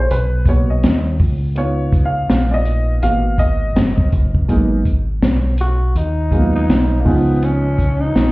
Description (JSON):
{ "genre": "hip hop, jazz-hop", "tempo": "82 BPM", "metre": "4/4", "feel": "swing 61% on 16ths", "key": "G# dorian", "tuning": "A4 = 443 Hz", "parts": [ { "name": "warm upright piano", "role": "accompaniment", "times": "0.0-8.2 s", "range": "E#3 to E#5", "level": "-20 LUFS", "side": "right 1 dB", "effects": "none" }, { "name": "deep dub fingered electric bass", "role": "bass", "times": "0.0-8.3 s", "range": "F#1 to D#2", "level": "-18 LUFS", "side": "equal", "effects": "none" }, { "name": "open jazz drum kit", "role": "drums", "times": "0.1-8.3 s", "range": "hi-hat, kick drum, snare drum", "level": "-16 LUFS", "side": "equal", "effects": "none" }, { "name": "growling tenor saxophone", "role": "melody", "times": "5.6-8.3 s", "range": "A#3 to F#4", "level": "-20 LUFS", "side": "equal", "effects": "none" } ], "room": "light reverb, studio reverb", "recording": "heard muffled through a wall, club reverb, EQ", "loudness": "-14 LUFS", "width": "side -20 dB against mid", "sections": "0.0-4.5 A section; 4.5-8.3 B section", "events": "upright piano solo 0.0-4.5", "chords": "0.0 G#m7 (rootless); 1.2 C#7; 3.0 G#m9; 4.5 G#m7; 7.1 C#7" }